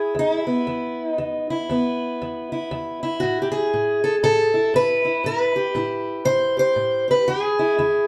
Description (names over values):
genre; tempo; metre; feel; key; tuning
acoustic country blues, solo or duo; 118 BPM; 4/4; swing 60% on 8ths; E major; A4 = 440 Hz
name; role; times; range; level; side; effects
fingerpicked steel-string acoustic guitar; solo; 0.0-8.1 s; E2 to C5; -22 LUFS; equal; none
room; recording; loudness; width
wet studio reverb, RT60 0.8 s; heard from further back in the room; -22 LUFS; mono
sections
0.0-8.1 A section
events
none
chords
0.0 E; 3.2 A5; 5.2 Am7; 7.3 E